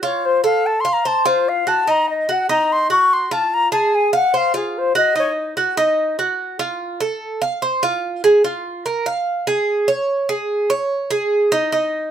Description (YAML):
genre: latin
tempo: 146 BPM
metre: 4/4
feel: straight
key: Bb minor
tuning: A4 = 440 Hz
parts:
  - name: silver concert flute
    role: melody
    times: 0.0-5.3 s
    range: G#4 to Db6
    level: -17 LUFS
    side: left 3 dB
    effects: plate reverb
  - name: Cuban tres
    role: arpeggios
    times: 0.0-12.1 s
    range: Eb4 to F5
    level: -18 LUFS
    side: right 2 dB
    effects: none
room: light reverb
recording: none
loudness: -16 LUFS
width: side -9 dB against mid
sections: 0.0-8.4 A section; 8.4-12.1 B section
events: flute solo 0.0-8.4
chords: 0.2 F; 1.9 Ebm69; 3.5 Fm; 5.2 Ebm; 6.8 F; 8.4 Bbm7; 10.1 Dbsus2